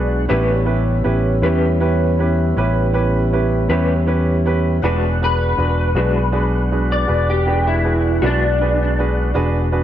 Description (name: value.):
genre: slow blues.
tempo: 53 BPM (dotted quarters).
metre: 12/8.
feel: straight.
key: E mixolydian.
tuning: A4 = 440 Hz.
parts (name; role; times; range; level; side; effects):
clear baby grand piano; accompaniment; 0.0-9.8 s; C#4 to B4; -22 LUFS; right 3 dB; wide subtle chorus.
mellow tonewheel organ; sustained chords; 0.0-9.8 s; G3 to F#5; -23 LUFS; equal; slow rotary speaker.
fingered electric bass; bass; 0.0-9.8 s; E1 to E2; -18 LUFS; equal; none.
electric guitar through a small old amp; accompaniment; 0.3-8.5 s; E3 to B4; -26 LUFS; left 2 dB; tremolo.
electric guitar through a small old amp; melody; 5.2-9.0 s; D4 to D5; -22 LUFS; left 2 dB; ensemble chorus, tape echo.
room: moderate church reverb, RT60 3.3 s.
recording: dreamy mix soaked in reverb.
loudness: -15 LUFS.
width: side -11 dB against mid.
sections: 0.0-9.8 A section.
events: clean electric guitar solo 0.0-9.8.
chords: 0.3 A9; 4.8 E9.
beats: | 0.30 1.44 2.57 3.70 | 4.83 5.97 7.10 8.23 | 9.36.